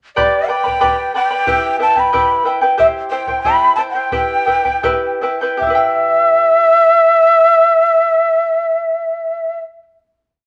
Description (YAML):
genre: andean folk, Andean ensemble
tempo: 74-92 BPM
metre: 2/4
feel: straight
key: E minor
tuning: A4 = 440 Hz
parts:
  - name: breathy quena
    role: melody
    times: 0.2-9.6 s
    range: D5 to B5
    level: -15 LUFS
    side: equal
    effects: none
  - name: charango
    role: accompaniment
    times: 0.2-9.8 s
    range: E4 to B5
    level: -19 LUFS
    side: equal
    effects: none
  - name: bombo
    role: percussion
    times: 0.2-6.0 s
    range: none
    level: -33 LUFS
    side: equal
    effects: none
room: moderate studio reverb, RT60 0.8 s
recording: none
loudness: -14 LUFS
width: mono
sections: 0.2-5.6 A section; 5.6-8.8 final chord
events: slowing down 2.8-5.6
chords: 0.2 G; 1.5 Em; 2.8 C; 4.1 Em